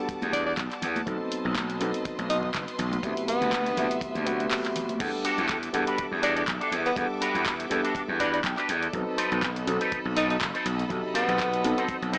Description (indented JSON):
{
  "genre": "nu-disco, nu disco",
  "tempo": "122 BPM",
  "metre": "4/4",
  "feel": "swing 55% on 16ths",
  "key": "E minor",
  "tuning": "A4 = 440 Hz",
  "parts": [
    { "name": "dark concert grand piano", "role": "accompaniment", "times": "0.0-12.2 s", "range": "C3 to F#5", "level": "-35 LUFS", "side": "equal", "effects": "sidechain pumping" },
    { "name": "rich studio violin section", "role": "sustained chords", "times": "0.0-12.2 s", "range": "G3 to D6", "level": "-40 LUFS", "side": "equal", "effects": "sidechain pumping" },
    { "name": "house drum kit", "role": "drums", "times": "0.1-12.2 s", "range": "crash cymbal, handclaps, hi-hat", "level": "-36 LUFS", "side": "equal", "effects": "none" },
    { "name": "kick drum", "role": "drums", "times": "0.1-12.2 s", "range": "none", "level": "-41 LUFS", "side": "equal", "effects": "none" },
    { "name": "gritty slap bass", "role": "bass", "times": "0.2-12.2 s", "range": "F#1 to E2", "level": "-32 LUFS", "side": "equal", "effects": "overdrive, tube saturation, sidechain pumping" },
    { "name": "congas", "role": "percussion", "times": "0.2-5.0 s", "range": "none", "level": "-42 LUFS", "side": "equal", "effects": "none" },
    { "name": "breathy tenor saxophone", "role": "melody", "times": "0.3-11.8 s", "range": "B3 to D#4", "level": "-32 LUFS", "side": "equal", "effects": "tape echo" },
    { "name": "electric guitar with an envelope filter", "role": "riff", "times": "5.2-12.2 s", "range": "C4 to G5", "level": "-32 LUFS", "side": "equal", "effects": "ensemble chorus" }
  ],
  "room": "light reverb",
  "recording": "dry, gritty hardware recording, small speaker sound",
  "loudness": "-27 LUFS",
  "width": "mono",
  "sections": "0.0-5.0 A section; 5.0-12.2 B section",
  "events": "kick drops out 4.5-5.0; band accent 4.5; drop 5.0-12.2; clean electric guitar fill 8.2-8.9",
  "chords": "0.0 Em11; 1.1 B7b9; 3.0 D13; 5.0 Em11; 8.9 B7b9",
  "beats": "0.08 0.57 | 1.07 1.56 2.05 2.54 | 3.03 3.52 4.02 4.51 | 5.00 5.49 5.98 6.48 | 6.97 7.46 7.95 8.44 | 8.94 9.43 9.92 10.41 | 10.90 11.39 11.89"
}